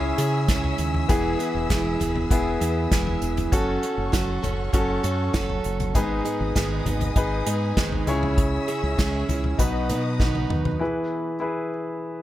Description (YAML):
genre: piano-driven pop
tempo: 99 BPM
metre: 4/4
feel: straight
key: E major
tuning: A4 = 439 Hz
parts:
  - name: warm concert grand piano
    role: accompaniment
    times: 0.0-12.2 s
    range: G#2 to C#5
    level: -27 LUFS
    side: left 2 dB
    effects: plate reverb
  - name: warm studio string section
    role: sustained chords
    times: 0.0-10.8 s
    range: A4 to E6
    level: -35 LUFS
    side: left 1 dB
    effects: plate reverb
  - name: picked plugged-in steel-string acoustic guitar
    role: riff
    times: 0.0-11.3 s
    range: G#2 to B4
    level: -29 LUFS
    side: right 6 dB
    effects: none
  - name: fingered electric bass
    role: bass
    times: 0.0-10.8 s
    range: E1 to C#3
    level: -27 LUFS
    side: equal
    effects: none
  - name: unplugged drum kit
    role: drums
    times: 0.2-10.8 s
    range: hi-hat, kick drum, snare drum, toms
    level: -25 LUFS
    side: equal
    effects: none
room: light reverb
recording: none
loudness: -21 LUFS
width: side -14 dB against mid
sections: 0.0-10.8 A section; 10.8-12.2 B section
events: drum fill 10.2-10.8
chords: 0.0 C#m; 1.1 E; 3.5 F#m; 5.9 G#m; 8.1 C#m; 9.6 B; 10.8 E